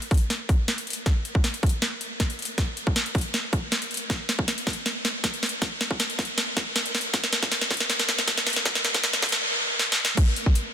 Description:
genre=future bass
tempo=158 BPM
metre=4/4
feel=half-time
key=none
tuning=none
part: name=trap drum kit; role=drums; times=0.0-10.6 s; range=crash cymbal, hi-hat, snare drum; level=-24 LUFS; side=equal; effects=overdrive, small room ambience
part: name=electronic kick drum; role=drums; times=0.1-10.5 s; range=none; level=-23 LUFS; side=equal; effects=overdrive, small room ambience
room=moderate huge ambient reverb, RT60 5.0 s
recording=dense, heavily limited modern master, high-pass filter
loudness=-22 LUFS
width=side -9 dB against mid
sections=0.0-10.2 A section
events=build-up 0.0-10.2; drum fill 0.0-9.4, 9.8-10.2; filter sweep 0.0-10.2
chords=none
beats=0.30 0.68 | 1.06 1.44 1.82 2.20 | 2.58 2.96 3.34 3.72 | 4.10 4.48 4.86 5.24 | 5.62 6.00 6.38 6.76 | 7.14 7.52 7.90 8.28 | 8.65 9.04 9.41 9.79 | 10.17 10.55

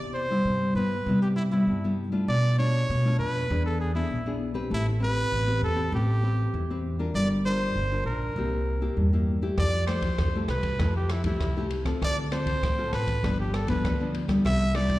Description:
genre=samba and choro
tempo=99 BPM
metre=4/4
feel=straight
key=C major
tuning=A4 = 438 Hz
part: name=nylon-string guitar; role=accompaniment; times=0.0-15.0 s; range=G2 to B4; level=-28 LUFS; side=left 1 dB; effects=slapback echo
part: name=upright bass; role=bass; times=0.0-15.0 s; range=G1 to C3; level=-28 LUFS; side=equal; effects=none
part: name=bright trumpet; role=melody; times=0.1-15.0 s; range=E4 to E5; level=-31 LUFS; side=right 1 dB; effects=slapback echo
part: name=open jazz drum kit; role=drums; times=9.6-15.0 s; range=kick drum, ride cymbal, rim click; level=-30 LUFS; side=equal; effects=none
room=light reverb, studio reverb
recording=live gig heard through the venue's PA, recital hall reverb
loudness=-24 LUFS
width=side -16 dB against mid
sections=0.0-15.0 A section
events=none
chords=0.0 Cmaj7; 2.3 Bm7b5; 3.5 E7; 4.7 Am9; 7.1 Gm7; 8.4 C7; 9.6 Fmaj9; 12.0 Dm7; 13.2 G7; 14.4 Cmaj7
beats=0.46 1.06 1.67 | 2.28 2.88 3.49 4.10 | 4.71 5.32 5.92 6.53 | 7.14 7.75 8.36 8.97 | 9.58 10.19 10.79 11.40 | 12.01 12.62 13.23 13.84 | 14.45

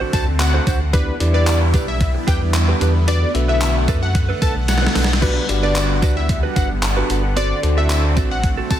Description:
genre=dance-pop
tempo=112 BPM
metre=4/4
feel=straight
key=G major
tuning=A4 = 440 Hz
part: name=supersaw pad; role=sustained chords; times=0.0-8.8 s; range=D3 to F#5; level=-26 LUFS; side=equal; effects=phaser, sidechain pumping
part: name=direct-recorded clean electric guitar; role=riff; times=0.0-8.8 s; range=C4 to C5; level=-26 LUFS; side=right 8 dB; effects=wide subtle chorus
part: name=sub bass with octave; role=bass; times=0.0-8.8 s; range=G1 to F#2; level=-19 LUFS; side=equal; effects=sidechain pumping
part: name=plucky unison lead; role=melody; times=0.1-8.8 s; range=B4 to A5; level=-25 LUFS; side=left 1 dB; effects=sidechain pumping, digital delay
part: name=gated 80s digital drum machine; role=drums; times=0.1-8.8 s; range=crash cymbal, handclaps, hi-hat, kick drum, snare drum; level=-20 LUFS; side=equal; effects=gated reverb, gated reverb snare
part: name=tambourine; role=percussion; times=0.1-8.8 s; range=none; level=-36 LUFS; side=left 6 dB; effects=none
part: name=bell-like tine electric piano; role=accompaniment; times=0.9-8.4 s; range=D4 to E5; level=-26 LUFS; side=left 4 dB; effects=medium stereo tremolo, sidechain pumping
room=little or no reverb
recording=dense, heavily limited modern master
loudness=-15 LUFS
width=side -11 dB against mid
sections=0.0-8.8 A section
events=drum fill 4.7-5.2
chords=0.0 D7; 0.9 Em7; 3.1 Bm7; 5.2 Gmaj7; 7.4 D7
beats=0.40 | 0.94 1.47 2.01 2.54 | 3.08 3.61 4.15 4.69 | 5.22 5.76 6.29 6.83 | 7.36 7.90 8.44

